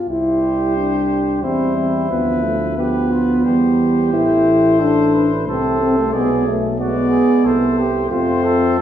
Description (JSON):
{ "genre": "classical, brass quintet", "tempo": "90 BPM", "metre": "3/4", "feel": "rubato", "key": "C major", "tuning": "A4 = 441 Hz", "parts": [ { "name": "mellow French horn", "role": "accompaniment", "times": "0.0-8.8 s", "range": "A3 to E4", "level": "-16 LUFS", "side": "left 1 dB", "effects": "none" }, { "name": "bright trumpet", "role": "melody", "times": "0.1-8.8 s", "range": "B4 to D5", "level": "-28 LUFS", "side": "left 7 dB", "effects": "none" }, { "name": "warm flugelhorn", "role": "second line", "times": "0.1-8.8 s", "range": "E4 to B4", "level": "-22 LUFS", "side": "right 5 dB", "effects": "none" }, { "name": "warm trombone", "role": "accompaniment", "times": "0.1-8.8 s", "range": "F3 to A3", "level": "-24 LUFS", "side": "right 2 dB", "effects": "none" }, { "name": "warm bass trombone", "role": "bass", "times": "0.1-8.8 s", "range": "A1 to F2", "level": "-25 LUFS", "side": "right 1 dB", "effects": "none" } ], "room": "wet recital hall reverb, RT60 1.4 s", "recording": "recorded in a church or concert hall", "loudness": "-14 LUFS", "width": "side -10 dB against mid", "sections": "0.1-8.8 A section", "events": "none", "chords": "0.1 C; 2.1 Bdim/D; 3.4 C/E; 4.1 Am; 6.1 G#dim/B; 7.5 Am/C; 8.1 F", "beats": "| 0.09 0.77 1.43 | 2.10 2.77 3.44 | 4.13 4.80 5.47 | 6.14 6.79 7.46 | 8.11 8.80" }